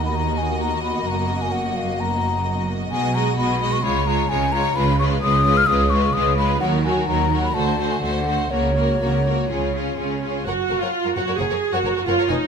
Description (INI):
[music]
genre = classical, dramatic, fast romantic movement for symphony orchestra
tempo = 130 BPM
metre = 4/4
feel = rubato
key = F# major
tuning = A4 = 440 Hz
[part]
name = clear symphonic violin section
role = melody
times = 0.0-12.3 s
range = G#4 to G#5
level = -29 LUFS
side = left 3 dB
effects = none
[part]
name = mellow hollow concert flute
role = second line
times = 0.0-10.0 s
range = C#5 to E#6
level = -23 LUFS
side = left 4 dB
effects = none
[part]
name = warm symphonic violin section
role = second line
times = 0.0-12.3 s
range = E#4 to C#5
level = -28 LUFS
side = left 3 dB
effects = none
[part]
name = rich studio viola section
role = accompaniment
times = 0.0-12.5 s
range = F#3 to G#4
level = -25 LUFS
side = right 2 dB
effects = none
[part]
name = rich symphonic cello section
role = bass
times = 0.0-12.3 s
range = Eb2 to D#3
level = -26 LUFS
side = right 2 dB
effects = none
[part]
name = warm symphonic double bass section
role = bass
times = 0.0-12.3 s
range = E#1 to Eb2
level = -26 LUFS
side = right 2 dB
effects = none
[sound]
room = moderate scoring stage reverb, RT60 1.5 s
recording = none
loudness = -18 LUFS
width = side -6 dB against mid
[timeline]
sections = 0.0-10.5 A section; 10.5-12.5 B section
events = none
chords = 0.0 Ebm; 1.1 Ebm/Gb; 2.9 G#m7/B; 3.8 C#; 6.6 D#m; 7.5 D7; 8.5 F#/C#; 9.5 C#; 10.5 F#